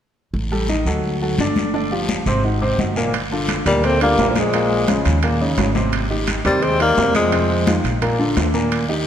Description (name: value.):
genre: Afro-Cuban jazz.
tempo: 172 BPM.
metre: 4/4.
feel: straight.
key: G minor.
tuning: A4 = 441 Hz.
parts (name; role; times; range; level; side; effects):
upright bass; bass; 0.3-9.1 s; G1 to F2; -22 LUFS; right 1 dB; none.
congas; percussion; 0.3-9.1 s; none; -25 LUFS; left 2 dB; none.
guiro; percussion; 0.3-9.1 s; none; -30 LUFS; left 3 dB; none.
clear grand piano; accompaniment; 0.5-9.1 s; Bb2 to Eb5; -21 LUFS; equal; none.
timbales; percussion; 3.1-8.9 s; none; -27 LUFS; right 8 dB; none.
bright tenor saxophone; melody; 3.7-7.8 s; F3 to C4; -19 LUFS; left 3 dB; none.
growling trombone; second line; 3.7-7.8 s; D3 to A3; -26 LUFS; right 3 dB; none.
room: moderate concert hall reverb, RT60 1.9 s.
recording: none.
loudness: -16 LUFS.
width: side -9 dB against mid.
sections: 0.3-3.1 A section; 3.1-9.1 B section.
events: none.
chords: 0.3 Ebmaj7#11/A; 1.0 D; 1.7 G5; 2.4 Ab9; 3.1 Gm7; 4.5 Bbm7; 5.2 Eb5; 5.9 Abmaj7; 7.3 Fm7; 8.0 Bb.